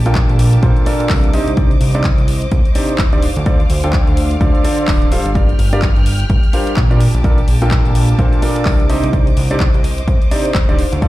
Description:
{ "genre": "piano house", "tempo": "127 BPM", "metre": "4/4", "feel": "swing 59% on 16ths", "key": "unclear", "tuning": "A4 = 444 Hz", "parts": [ { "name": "rich symphonic violin section", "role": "sustained chords", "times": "0.0-11.1 s", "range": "G4 to F6", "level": "-27 LUFS", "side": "left 1 dB", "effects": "sidechain pumping" }, { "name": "fat analog bass", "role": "bass", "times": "0.0-11.1 s", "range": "D1 to Bb2", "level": "-16 LUFS", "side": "equal", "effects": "sidechain pumping" }, { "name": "clear concert grand piano", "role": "riff", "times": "0.1-11.1 s", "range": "Bb2 to G5", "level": "-19 LUFS", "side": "right 1 dB", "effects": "sidechain pumping, low-pass filter, dub echo" }, { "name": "house drum kit", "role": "drums", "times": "0.1-11.1 s", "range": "handclaps, hi-hat", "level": "-26 LUFS", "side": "equal", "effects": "none" }, { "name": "electronic kick drum", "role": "drums", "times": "0.2-11.1 s", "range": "none", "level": "-14 LUFS", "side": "equal", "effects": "none" } ], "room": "studio ambience", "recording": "played on a big sound system in a bare room, large studio reverb", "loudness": "-11 LUFS", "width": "side -16 dB against mid", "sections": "0.0-11.1 A section", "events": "none", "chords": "0.0 Bbmaj7; 1.3 Cmadd9; 3.2 Dm7; 5.4 Gm7; 7.0 Bbmaj7; 8.9 Cmadd9" }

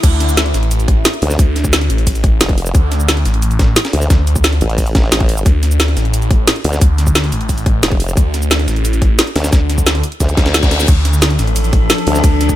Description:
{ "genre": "dark technical drum and bass", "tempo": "177 BPM", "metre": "4/4", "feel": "straight", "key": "D minor", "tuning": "A4 = 440 Hz", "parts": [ { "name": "phased detuned saw bass", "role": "bass", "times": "0.0-12.6 s", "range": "A1 to D2", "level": "-14 LUFS", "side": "equal", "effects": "phaser, overdrive" }, { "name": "breakbeat sampler-style drum kit", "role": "drums", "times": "0.0-12.5 s", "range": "hi-hat, snare drum", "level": "-24 LUFS", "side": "equal", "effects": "high-pass filter on hats, high-pass filter on snare" }, { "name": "drum and bass drum kit", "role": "drums", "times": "0.0-12.6 s", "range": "crash cymbal, hi-hat, ride cymbal, shaker, snare drum", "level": "-17 LUFS", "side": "equal", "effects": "none" }, { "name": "electronic kick drum", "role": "drums", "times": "0.0-12.6 s", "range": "none", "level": "-12 LUFS", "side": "equal", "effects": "none" }, { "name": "formant-sweep wobble bass", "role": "bass", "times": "1.2-12.2 s", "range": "F1 to D2", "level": "-15 LUFS", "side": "equal", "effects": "chorus" }, { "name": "reverse cymbal", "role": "sound effects", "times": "10.3-10.9 s", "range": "none", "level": "-22 LUFS", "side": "left 4 dB", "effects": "none" }, { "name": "metallic inharmonic drone", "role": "sustained chords", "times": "11.3-12.6 s", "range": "F3 to A4", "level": "-22 LUFS", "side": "left 3 dB", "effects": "chorus, built-in reverb, sidechain pumping" } ], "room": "little or no reverb", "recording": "none", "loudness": "-11 LUFS", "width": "side -14 dB against mid", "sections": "0.0-12.6 A section", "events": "drop 0.0-12.6; reverse cymbal 10.3-10.9", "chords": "0.0 Dm" }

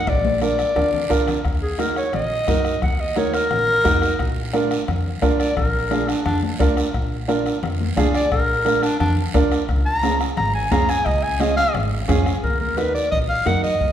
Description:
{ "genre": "latin, cumbia", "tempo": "175 BPM", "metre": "4/4", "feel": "straight", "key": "Eb harmonic minor", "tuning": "A4 = 440 Hz", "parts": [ { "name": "clear clarinet", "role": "melody", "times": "0.0-13.9 s", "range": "D4 to Bb5", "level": "-21 LUFS", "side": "left 1 dB", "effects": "none" }, { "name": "upright bass", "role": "bass", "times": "0.1-13.9 s", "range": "Ab1 to Gb2", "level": "-25 LUFS", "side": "equal", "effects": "none" }, { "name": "bombo", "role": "percussion", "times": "0.1-13.9 s", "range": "none", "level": "-25 LUFS", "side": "left 1 dB", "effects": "none" }, { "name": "congas", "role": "percussion", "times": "0.1-13.9 s", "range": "none", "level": "-29 LUFS", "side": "left 5 dB", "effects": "none" }, { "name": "guiro", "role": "percussion", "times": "0.1-13.9 s", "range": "none", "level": "-36 LUFS", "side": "right 4 dB", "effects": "none" }, { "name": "warm upright piano", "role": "accompaniment", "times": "0.4-13.7 s", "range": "Db4 to Bb4", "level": "-24 LUFS", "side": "right 4 dB", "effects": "none" } ], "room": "wet recital hall reverb, RT60 1.4 s", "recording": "recorded in a church or concert hall", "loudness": "-17 LUFS", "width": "side -10 dB against mid", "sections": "0.0-1.4 A section; 1.4-12.4 B section; 12.4-13.9 C section", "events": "drum fill 0.1-1.4; clarinet solo 1.4-12.4", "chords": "0.1 Bb; 1.4 Ebm; 4.2 Bb; 9.7 Db; 12.4 Ebm" }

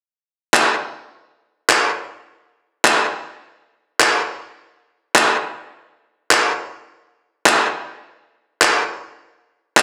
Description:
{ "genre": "pop", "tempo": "104 BPM", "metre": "4/4", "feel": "straight", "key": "none", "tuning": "none", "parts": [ { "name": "electronic handclaps", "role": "drums", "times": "0.5-9.8 s", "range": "none", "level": "-16 LUFS", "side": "equal", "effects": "gated reverb, overdrive, slapback echo" } ], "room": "moderate plate reverb, RT60 1.3 s, digital ambience", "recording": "live gig heard through the venue's PA, club reverb", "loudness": "-18 LUFS", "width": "mono", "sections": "0.0-9.8 A section", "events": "none", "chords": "none" }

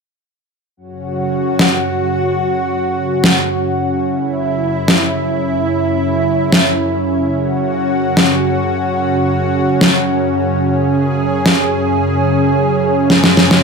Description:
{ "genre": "heavy wobble dubstep", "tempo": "146 BPM", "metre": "4/4", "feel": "swing 55% on 16ths, half-time", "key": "unclear", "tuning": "A4 = 440 Hz", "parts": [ { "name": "lush unison pad", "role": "sustained chords", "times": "0.8-13.6 s", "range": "F#2 to G#4", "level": "-14 LUFS", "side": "right 1 dB", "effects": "chorus" }, { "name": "electronic snare drum", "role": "drums", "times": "1.6-13.6 s", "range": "none", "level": "-12 LUFS", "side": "equal", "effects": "overdrive" } ], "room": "moderate digital room reverb, RT60 1.1 s, digital ambience", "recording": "none", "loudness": "-12 LUFS", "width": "side -4 dB against mid", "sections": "0.8-13.6 A section", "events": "drum fill 13.1-13.6", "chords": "0.8 F#5" }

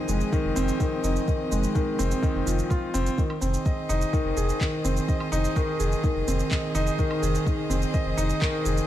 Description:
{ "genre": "piano and strings electronica", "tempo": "126 BPM", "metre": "4/4", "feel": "straight", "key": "F minor", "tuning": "A4 = 440 Hz", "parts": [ { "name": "dark string quartet", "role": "sustained chords", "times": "0.0-8.9 s", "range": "Eb3 to Eb5", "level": "-32 LUFS", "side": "right 3 dB", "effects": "sidechain pumping" }, { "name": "warm grand piano", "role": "riff", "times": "0.0-8.9 s", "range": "Eb3 to Eb5", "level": "-27 LUFS", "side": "left 1 dB", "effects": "low-pass filter, digital delay" }, { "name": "warm sub bass", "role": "bass", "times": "0.1-8.8 s", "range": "F1", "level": "-27 LUFS", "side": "equal", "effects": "sidechain pumping" }, { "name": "electronic shaker, woodblock and handclaps", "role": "drums", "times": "0.1-8.9 s", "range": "none", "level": "-35 LUFS", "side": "right 3 dB", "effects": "small room ambience" }, { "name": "electronic kick drum", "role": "drums", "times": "0.3-8.5 s", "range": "none", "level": "-25 LUFS", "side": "equal", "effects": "small room ambience" } ], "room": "light reverb, small room ambience", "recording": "none", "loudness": "-23 LUFS", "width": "side -12 dB against mid", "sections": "0.0-8.9 A section", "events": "filter sweep on grand piano 0.0-8.9", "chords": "0.0 Fm7" }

